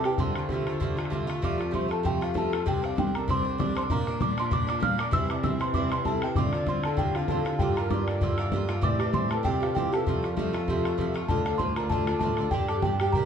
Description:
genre	celtic folk, Celtic reel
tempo	194 BPM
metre	4/4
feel	swing 56% on 8ths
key	F major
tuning	A4 = 440 Hz
part	small celesta	melody	0.0-13.3 s	F5 to F6	-31 LUFS	right 2 dB	plate reverb
part	baroque flute	second line	0.0-13.3 s	F4 to F5	-35 LUFS	left 7 dB	none
part	cimbalom	second line	0.0-3.2, 6.4-13.0 s	F4 to E5	-36 LUFS	right 3 dB	none
part	Irish bouzouki	accompaniment	0.0-13.3 s	G2 to G4	-31 LUFS	right 2 dB	none
part	warm cello	bass	0.0-13.3 s	C2 to D3	-32 LUFS	left 1 dB	none
part	bodhran	percussion	0.0-13.2 s	none	-30 LUFS	left 1 dB	none
room	wet small room reverb, RT60 0.5 s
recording	heard from further back in the room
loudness	-24 LUFS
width	side -7 dB against mid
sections	0.0-1.4 A section; 1.4-11.3 B section; 11.3-13.3 A section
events	none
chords	0.2 Dm7; 1.4 F; 2.7 Csus2; 3.9 Bb; 5.1 C; 6.4 Dm7; 7.6 Gm7; 8.8 Am7; 9.4 C7; 10.1 F; 11.3 Dm; 12.5 Gm

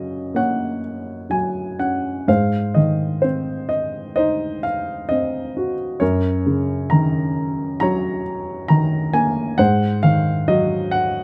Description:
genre	classical, lyrical solo piano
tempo	61-68 BPM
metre	4/4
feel	rubato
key	Eb dorian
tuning	A4 = 440 Hz
part	warm grand piano	solo	0.0-11.2 s	Gb2 to Bb5	-20 LUFS	equal	none
room	light reverb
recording	close, detailed microphones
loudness	-20 LUFS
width	mono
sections	0.0-11.2 A section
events	none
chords	0.0 Ebm7/Gb; 2.3 Ab7; 6.0 Ebm7/Gb; 9.6 Ab7

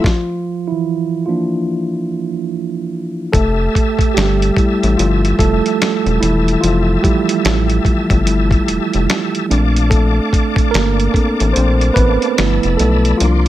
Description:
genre	R&B, neo-soul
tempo	73 BPM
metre	4/4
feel	swing 61% on 16ths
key	F major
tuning	A4 = 439 Hz
part	mellow tine electric piano	accompaniment	0.0-13.5 s	E3 to C5	-16 LUFS	moving between left 2 dB and right 7 dB	auto-pan
part	bright tonewheel organ	sustained chords	0.0-13.5 s	G4 to E6	-24 LUFS	left 3 dB	slow rotary speaker, overdrive, chorus vibrato
part	dusty soul sampler-style drum kit	drums	0.0-13.5 s	finger snaps, hi-hat, kick drum, snare drum	-17 LUFS	equal	none
part	rubbery square bass	bass	3.3-13.5 s	E1 to C2	-15 LUFS	left 1 dB	none
room	light reverb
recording	none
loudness	-13 LUFS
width	side -14 dB against mid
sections	0.0-3.3 A section; 3.3-13.5 A section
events	tine electric piano solo 0.0-3.3, 3.3-13.5; stop 0.0-3.3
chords	0.0 Bb; 3.3 Fmaj9; 9.5 Bbmaj7; 12.4 G13

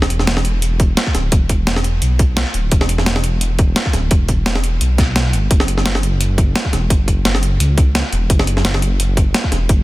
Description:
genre	liquid drum and bass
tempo	172 BPM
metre	4/4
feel	swing 54% on 16ths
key	unclear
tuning	A4 = 444 Hz
part	dark detuned saw bass	bass	0.0-9.8 s	D1 to C#2	-17 LUFS	equal	tube saturation
part	breakbeat sampler-style drum kit	drums	0.0-9.8 s	hi-hat, snare drum	-19 LUFS	equal	none
part	electronic kick drum	drums	0.8-9.8 s	none	-14 LUFS	equal	overdrive
room	little or no reverb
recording	dense, heavily limited modern master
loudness	-13 LUFS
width	side -18 dB against mid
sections	0.0-9.8 A section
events	none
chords	none

